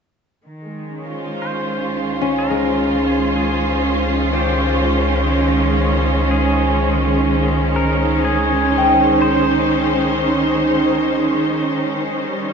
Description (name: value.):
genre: ambient.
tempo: 61 BPM.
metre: 3/4.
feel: straight.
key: Db lydian.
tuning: A4 = 440 Hz.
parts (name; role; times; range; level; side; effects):
deep rumbling drone; bass; 2.4-12.5 s; Db2; -23 LUFS; left 1 dB; built-in reverb.
dark symphonic string section; sustained chords; 0.5-12.5 s; Eb3 to C5; -17 LUFS; right 2 dB; none.
pedal steel guitar; melody; 1.4-11.6 s; G4 to C5; -26 LUFS; equal; tape echo.
concert harp; arpeggios; 2.2-12.5 s; Ab3 to G5; -21 LUFS; left 2 dB; tape echo.
room: wet scoring stage reverb, RT60 2.0 s.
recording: nothing above 7.9 kHz.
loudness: -15 LUFS.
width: side -6 dB against mid.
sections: 0.4-12.5 A section.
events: fade-in on pedal steel guitar 0.4-12.5.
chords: 0.4 Dbmaj9.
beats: | 0.44 1.42 2.40 | 3.37 4.34 5.31 | 6.28 7.25 8.23 | 9.21 10.19 11.18 | 12.18.